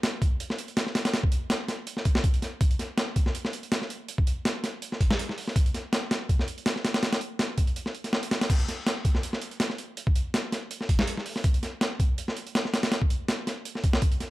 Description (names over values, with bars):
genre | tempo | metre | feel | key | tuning
drum and bass | 163 BPM | 4/4 | swing 54% on 16ths | none | none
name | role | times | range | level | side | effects
breakbeat sampler-style drum kit | drums | 0.0-14.3 s | crash cymbal, hi-hat, kick drum, snare drum | -25 LUFS | equal | studio reverb
room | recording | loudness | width
little or no reverb | none | -25 LUFS | side -18 dB against mid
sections
0.0-8.5 A section; 8.5-14.3 A section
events
drop 0.0-8.5, 8.5-14.3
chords
none